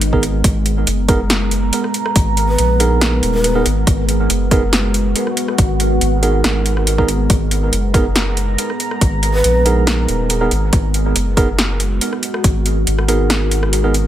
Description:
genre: deep dubstep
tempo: 140 BPM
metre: 4/4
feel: half-time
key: G# minor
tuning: A4 = 439 Hz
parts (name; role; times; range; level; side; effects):
- deep dark ambient pad; sustained chords; 0.0-14.1 s; G#3 to A#5; -21 LUFS; equal; chorus, built-in reverb
- soft dub sub bass; bass; 0.0-14.1 s; D#1 to A#1; -17 LUFS; equal; none
- deep house drum kit; drums; 0.0-14.0 s; hi-hat, rim click, snare drum; -19 LUFS; equal; overdrive, studio reverb
- tine electric piano; stabs; 0.1-13.9 s; B3 to A#4; -21 LUFS; right 4 dB; dub echo
- electronic kick drum; drums; 0.1-12.5 s; none; -16 LUFS; equal; overdrive, studio reverb
- breathy mellow long shakuhachi; melody; 2.5-3.7, 9.3-9.7 s; B4; -22 LUFS; left 1 dB; dub echo
room: light reverb, digital ambience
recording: none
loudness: -13 LUFS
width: side -12 dB against mid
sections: 0.0-14.1 A section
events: kick drops out 13.3-14.1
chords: 0.0 G#madd9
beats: 0.01 | 0.44 0.87 1.30 1.73 | 2.16 2.58 3.01 3.44 | 3.87 4.30 4.73 5.16 | 5.58 6.01 6.44 6.87 | 7.30 7.73 8.16 8.59 | 9.01 9.44 9.87 10.30 | 10.73 11.16 11.59 12.01 | 12.44 12.87 13.30 13.73

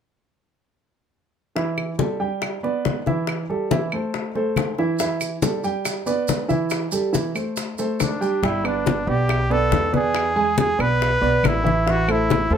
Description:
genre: latin, Cuban son and guajira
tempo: 140 BPM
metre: 4/4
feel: straight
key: G major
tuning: A4 = 440 Hz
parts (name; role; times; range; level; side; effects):
- warm grand piano; arpeggios; 1.6-12.6 s; E3 to G#5; -23 LUFS; right 3 dB; none
- bongos; percussion; 1.6-12.5 s; none; -29 LUFS; left 8 dB; none
- congas; percussion; 1.6-12.5 s; none; -25 LUFS; left 5 dB; none
- claves; percussion; 1.8-12.3 s; none; -30 LUFS; right 2 dB; none
- maracas; percussion; 5.0-8.4 s; none; -33 LUFS; right 5 dB; none
- breathy trumpet; melody; 8.0-12.6 s; D4 to B4; -22 LUFS; equal; plate reverb
- upright bass; bass; 8.4-12.6 s; G1 to E2; -24 LUFS; equal; none
room: moderate studio ambience, RT60 0.5 s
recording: none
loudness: -19 LUFS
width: side -8 dB against mid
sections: 1.6-8.4 A section; 8.4-12.6 B section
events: none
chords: 1.6 A5; 2.4 G; 3.3 Am7; 4.1 Am; 5.0 A5; 5.9 G; 6.7 Am7; 7.6 D5; 8.4 Gadd9; 10.1 E7; 11.9 Am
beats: | 1.56 1.99 2.42 2.85 | 3.28 3.71 4.14 4.57 | 5.00 5.42 5.86 6.29 | 6.71 7.14 7.57 8.00 | 8.43 8.86 9.29 9.72 | 10.15 10.58 11.01 11.44 | 11.87 12.30

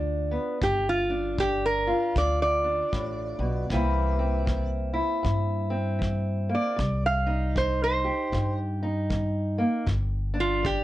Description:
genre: acoustic country blues, solo or duo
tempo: 78 BPM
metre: 4/4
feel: swing 61% on 8ths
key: unclear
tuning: A4 = 440 Hz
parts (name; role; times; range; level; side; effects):
- fingerpicked steel-string acoustic guitar; accompaniment; 0.0-10.8 s; G2 to G4; -29 LUFS; equal; none
- upright bass; bass; 0.0-10.8 s; G1 to G2; -28 LUFS; equal; none
- metal-body resonator slide guitar; melody; 0.6-10.8 s; F4 to F5; -26 LUFS; right 1 dB; none
- kick drum; drums; 0.6-10.8 s; none; -32 LUFS; equal; none
room: light reverb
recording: worn, warbling old tape, cassette tape, warbly pitch drift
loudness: -24 LUFS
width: side -15 dB against mid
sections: 0.0-10.8 A section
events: none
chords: 0.0 G7; 3.7 C7; 6.8 Cm; 9.9 G7(no3)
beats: | 0.61 1.39 2.16 2.93 | 3.70 4.47 5.25 6.02 | 6.79 7.56 8.34 9.11 | 9.88 10.65

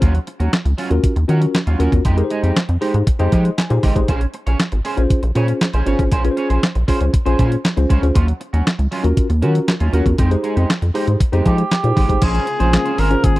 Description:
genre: early-eighties boogie funk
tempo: 118 BPM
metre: 4/4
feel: straight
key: Bb minor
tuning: A4 = 441 Hz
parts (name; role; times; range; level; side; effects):
- electric guitar at the edge of break-up; riff; 0.0-13.4 s; Gb3 to Db5; -25 LUFS; right 4 dB; analog chorus
- rubbery square bass; bass; 0.0-13.4 s; Ab1 to F3; -16 LUFS; equal; none
- crisp 8-bit digital drum machine; drums; 0.0-13.4 s; crash cymbal, handclaps, hi-hat, kick drum, snare drum; -18 LUFS; equal; none
- mellow tine electric piano; accompaniment; 0.9-13.4 s; Db4 to C6; -21 LUFS; left 2 dB; medium stereo tremolo
- mellow cor anglais; melody; 11.5-13.4 s; G4 to Bb4; -20 LUFS; equal; slapback echo
- lush unison pad; sustained chords; 12.2-13.4 s; C3 to F4; -29 LUFS; equal; chorus
room: digital ambience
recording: dry, close 1970s-style studio recording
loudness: -14 LUFS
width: side -18 dB against mid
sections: 0.0-12.2 A section; 12.2-13.4 B section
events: tine electric piano fill 3.1-4.1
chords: 0.0 Ebm9; 2.1 Fm9; 4.1 Bbm9; 8.2 Ebm9; 10.2 Fm9; 12.2 Bbm9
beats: | 0.02 0.53 1.03 1.54 | 2.05 2.56 3.07 3.58 | 4.09 4.59 5.10 5.61 | 6.12 6.63 7.14 7.64 | 8.15 8.66 9.17 9.68 | 10.19 10.70 11.21 11.71 | 12.22 12.73 13.24

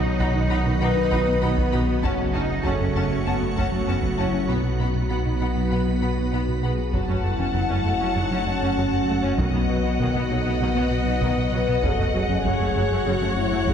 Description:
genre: cinematic, hybrid orchestral and electronic film score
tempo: 98 BPM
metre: 4/4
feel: straight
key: F# dorian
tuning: A4 = 440 Hz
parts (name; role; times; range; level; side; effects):
- dark French horn section; sustained chords; 0.0-13.7 s; A3 to C#5; -28 LUFS; left 2 dB; none
- mellow trombone section; sustained chords; 0.0-6.6 s; B2 to A3; -32 LUFS; right 2 dB; none
- soft additive organ-like pad; sustained chords; 0.0-13.7 s; F#3 to F#5; -29 LUFS; left 1 dB; ensemble chorus, built-in reverb
- rubbery square bass; riff; 0.0-13.7 s; F#2 to B3; -29 LUFS; right 1 dB; none
- clear symphonic cello section; bass; 0.0-13.7 s; F#2 to D#4; -31 LUFS; right 2 dB; none
- punchy sub bass; bass; 0.0-13.7 s; F#1 to B1; -29 LUFS; equal; none
- warm symphonic double bass section; bass; 0.0-13.7 s; F#1 to B1; -30 LUFS; right 2 dB; none
- warm symphonic violin section; melody; 0.2-13.7 s; F#5 to B5; -33 LUFS; left 2 dB; none
- warm symphonic violin section; second line; 0.2-13.7 s; C#5 to F#5; -32 LUFS; left 3 dB; none
- rich studio viola section; accompaniment; 0.2-13.7 s; C#3 to D#4; -33 LUFS; equal; none
- glassy wavetable pluck; arpeggios; 0.2-13.7 s; F#3 to B4; -33 LUFS; left 1 dB; none
- solo taiko drums; drums; 0.2-13.7 s; none; -30 LUFS; equal; none
room: wet concert hall reverb, RT60 1.8 s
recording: heard from further back in the room, nothing above 10.8 kHz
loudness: -20 LUFS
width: side -8 dB against mid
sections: 0.0-6.9 A section; 6.9-13.7 B section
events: none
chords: 0.0 B; 2.0 F#m; 4.5 B; 6.9 F#m; 9.4 B; 11.8 F#m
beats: 0.20 0.81 1.43 | 2.04 2.65 3.26 3.88 | 4.49 5.10 5.71 6.33 | 6.94 7.55 8.16 8.77 | 9.39 10.00 10.61 11.22 | 11.84 12.45 13.06 13.67

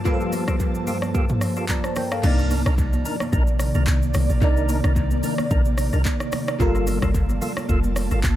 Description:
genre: amapiano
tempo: 110 BPM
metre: 4/4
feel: swing 55% on 16ths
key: C minor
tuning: A4 = 440 Hz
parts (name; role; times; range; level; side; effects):
- FM electric piano with soft pad layer; accompaniment; 0.0-8.4 s; C3 to Bb5; -28 LUFS; left 1 dB; chorus, phaser
- ethereal airy pad; sustained chords; 0.0-8.4 s; G2 to A5; -28 LUFS; equal; ensemble chorus, built-in reverb
- percussive tonewheel organ; stabs; 0.1-8.2 s; Bb3 to Bb4; -31 LUFS; equal; overdrive, chorus vibrato, slow rotary speaker, analog delay
- deep house drum kit; drums; 0.1-8.4 s; crash cymbal, handclaps, hi-hat, kick drum, rim click, shaker, toms; -24 LUFS; equal; analog delay
- congas; percussion; 0.3-8.4 s; none; -33 LUFS; right 3 dB; analog delay
- deep log drum bass; bass; 2.2-8.4 s; F1 to C2; -21 LUFS; equal; none
room: little or no reverb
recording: echo-heavy mix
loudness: -19 LUFS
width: side -13 dB against mid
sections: 0.0-2.2 A section; 2.2-8.4 B section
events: drop 2.2-8.4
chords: 0.0 Gm9; 2.2 Cm9; 6.6 Gm9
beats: | 0.06 0.60 1.15 1.69 | 2.24 2.78 3.33 3.87 | 4.42 4.96 5.51 6.05 | 6.60 7.15 7.69 8.24

